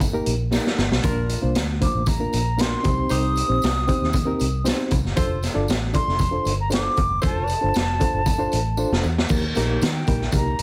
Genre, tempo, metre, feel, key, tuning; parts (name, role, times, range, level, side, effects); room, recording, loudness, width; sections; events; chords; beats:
uptempo 1960s-style soul; 116 BPM; 4/4; straight; A4 = 440 Hz
fingered electric bass; bass; 0.0-10.6 s; F1 to Eb3; -27 LUFS; equal
raw garage drum kit; drums; 0.0-10.6 s; crash cymbal, hi-hat, kick drum, snare drum; -26 LUFS; equal
tambourine; percussion; 0.0-10.6 s; -42 LUFS; equal
bright reed electric piano; accompaniment; 0.1-10.5 s; Bb3 to D5; -29 LUFS; equal; fast tremolo
warm saxophone section; second line; 1.0-7.6 s; D4 to C5; -32 LUFS; equal
concert flute; melody; 1.8-10.6 s; G5 to Eb6; -28 LUFS; equal
light reverb; heavily compressed radio sound; -22 LUFS; mono
0.0-9.3 A section; 9.3-10.6 B section
drum fill 0.5-1.0, 8.8-9.3
0.0 Eb; 1.0 Bb; 2.8 Cm; 5.2 F6; 9.3 Eb
0.01 0.53 | 1.04 1.56 2.07 2.59 | 3.10 3.62 4.13 4.65 | 5.17 5.68 6.20 6.72 | 7.23 7.75 8.27 8.79 | 9.30 9.82 10.34